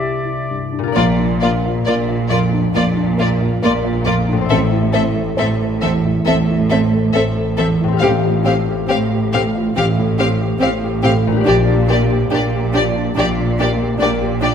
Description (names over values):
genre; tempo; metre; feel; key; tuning
cinematic, emotional film score for orchestra; 69 BPM; 4/4; rubato; Bb lydian; A4 = 441 Hz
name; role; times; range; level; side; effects
clear oboe; second line; 0.0-0.6 s; D5; -28 LUFS; left 2 dB; none
dark clarinet; second line; 0.0-0.6 s; G4; -30 LUFS; equal; none
silver concert flute; second line; 0.0-0.6 s; E5; -30 LUFS; right 1 dB; none
warm concert grand piano; accompaniment; 0.0-14.5 s; A1 to C5; -20 LUFS; left 1 dB; none
concert harp; arpeggios; 0.0-14.5 s; A2 to F5; -24 LUFS; left 7 dB; none
rich studio violin section; melody; 1.0-14.5 s; D5 to F5; -23 LUFS; left 3 dB; none
dark studio violin section; second line; 1.0-14.5 s; F4 to A4; -23 LUFS; left 3 dB; none
warm studio viola section; accompaniment; 1.0-14.5 s; Bb3 to D4; -24 LUFS; right 3 dB; none
warm studio cello section; bass; 1.0-14.5 s; A2 to Bb2; -21 LUFS; right 3 dB; none
warm studio double bass section; bass; 1.0-14.5 s; A1 to Bb1; -22 LUFS; right 4 dB; none
room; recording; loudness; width
moderate scoring stage reverb, RT60 2.2 s; none; -14 LUFS; side -8 dB against mid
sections
1.0-14.5 A section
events
none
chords
0.0 Cadd9; 1.0 Bb; 4.5 Am; 8.0 Fadd9/A; 11.4 Gm/Bb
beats
0.01 | 0.96 1.86 2.75 3.62 | 4.50 5.38 6.27 7.15 | 8.01 8.88 9.75 10.60 | 11.45 12.31 13.17 14.01